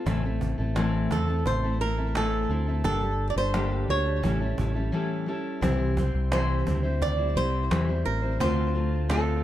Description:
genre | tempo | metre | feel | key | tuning
acoustic pop | 86 BPM | 4/4 | straight | unclear | A4 = 438 Hz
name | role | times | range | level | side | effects
fingerpicked steel-string acoustic guitar | accompaniment | 0.0-9.4 s | A2 to C5 | -29 LUFS | left 2 dB | none
fingered electric bass | bass | 0.1-9.4 s | G1 to E2 | -27 LUFS | equal | none
cajon | drums | 0.1-9.3 s | none | -34 LUFS | right 2 dB | none
flamenco guitar | melody | 1.1-9.4 s | A4 to D5 | -29 LUFS | right 2 dB | tape echo
room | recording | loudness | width
light reverb | dark, warm production | -24 LUFS | side -12 dB against mid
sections
0.0-5.6 A section; 5.6-9.4 B section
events
break 4.9-5.6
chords
0.1 Am; 2.8 Gmadd9; 4.2 A7; 5.6 C; 8.4 Dm7

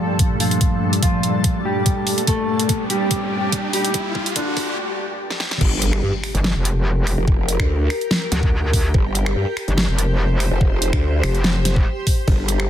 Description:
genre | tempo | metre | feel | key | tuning
heavy wobble dubstep | 144 BPM | 4/4 | swing 54% on 16ths, half-time | G minor | A4 = 440 Hz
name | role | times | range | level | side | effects
mellow electric guitar | melody | 0.0-4.8 s | D3 to A4 | -23 LUFS | right 1 dB | low-pass filter, dub echo
lush unison pad | sustained chords | 0.0-5.6, 12.5-12.7 s | G2 to D5 | -25 LUFS | left 1 dB | chorus, phaser, sidechain pumping
riser and impact | sound effects | 1.4-7.3 s | none | -29 LUFS | equal | none
granular cloud pad | texture | 0.0-12.7 s | A3 to A5 | -28 LUFS | left 1 dB | built-in reverb, sidechain pumping
dubstep drum kit | drums | 0.2-12.7 s | crash cymbal, finger snaps, hi-hat, ride cymbal, snare drum | -23 LUFS | equal | none
electronic kick drum | drums | 0.2-12.4 s | none | -19 LUFS | equal | none
growl bass | bass | 5.6-12.7 s | F1 to G2 | -20 LUFS | equal | chorus, overdrive
metallic wobble bass | bass | 6.3-11.8 s | F1 to D2 | -19 LUFS | equal | distortion, chorus, overdrive
room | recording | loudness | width
light reverb | dense, heavily limited modern master, high-pass filter | -17 LUFS | side -10 dB against mid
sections
0.0-5.6 A section; 5.6-12.7 B section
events
build-up 0.0-5.6; filter sweep 0.0-5.6; riser 1.4-4.8; drum fill 2.3-4.8, 5.3-5.6; break 4.8-5.6; drop 5.6-12.7; impact 5.6-7.3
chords
0.0 Gmadd9; 5.6 Gm

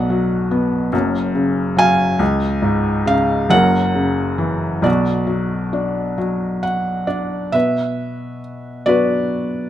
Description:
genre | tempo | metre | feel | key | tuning
classical, lyrical solo piano | 45 BPM (dotted quarters) | 6/8 | rubato | B minor | A4 = 436 Hz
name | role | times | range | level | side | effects
felt-muted upright piano | solo | 0.0-9.7 s | F#1 to G#5 | -16 LUFS | equal | none
room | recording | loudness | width
light reverb | close, detailed microphones | -16 LUFS | side -12 dB against mid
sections
0.0-7.5 A section; 7.5-9.7 B section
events
felt piano fill 6.2-7.5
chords
0.0 Bm; 0.9 F#5; 2.2 C#; 3.5 F#7; 4.8 Bm

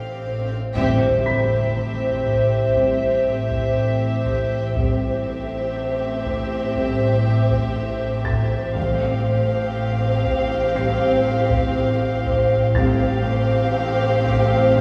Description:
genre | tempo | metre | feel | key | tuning
cinematic, suspense film score | 60 BPM | 4/4 | straight | A minor | A4 = 441 Hz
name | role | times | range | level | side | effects
warm symphonic violin section | second line | 0.0-14.8 s | G4 to F5 | -35 LUFS | equal | none
ethereal airy pad | sustained chords | 1.0-14.8 s | G4 to F5 | -28 LUFS | equal | ensemble chorus, built-in reverb
concert harp | riff | 0.0-14.8 s | A2 to A3 | -28 LUFS | equal | none
warm symphonic cello section | bass | 0.0-14.8 s | A2 | -30 LUFS | equal | none
warm symphonic double bass section | bass | 0.0-14.8 s | A1 | -28 LUFS | equal | none
swell and impact | sound effects | 0.0-4.8 s | none | -34 LUFS | equal | none
felt-muted upright piano | texture | 0.0-14.8 s | B5 to C7 | -37 LUFS | equal | none
warm chamber violin section | melody | 0.7-14.8 s | E5 to F5 | -32 LUFS | equal | none
warm studio viola section | accompaniment | 0.8-14.8 s | C4 | -28 LUFS | equal | none
dark French horn section | sustained chords | 0.8-14.8 s | G3 to C4 | -30 LUFS | equal | none
taiko ensemble | drums | 0.8-14.8 s | none | -31 LUFS | equal | none
timpani | percussion | 8.8-10.2 s | A2 | -33 LUFS | equal | none
room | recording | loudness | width
wet recital hall reverb, RT60 1.5 s | recorded in a church or concert hall | -20 LUFS | mono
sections
0.8-14.8 A section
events
swell 0.0-0.8; band accent 0.8-1.8; impact 0.8-4.8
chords
0.0 Fsus2/A; 0.8 Am7; 8.8 Fsus2/A

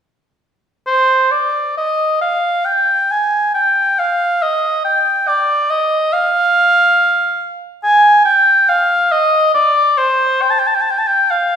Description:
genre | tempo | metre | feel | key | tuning
classical, baroque-style fantasia for unaccompanied oboe | 69 BPM | 4/4 | rubato | unclear | A4 = 442 Hz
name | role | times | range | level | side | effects
clear oboe | solo | 0.9-11.6 s | C5 to A5 | -11 LUFS | equal | none
room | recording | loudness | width
wet recital hall reverb, RT60 1.5 s | recorded in a church or concert hall | -12 LUFS | side -8 dB against mid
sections
0.9-11.6 A section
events
none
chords
none

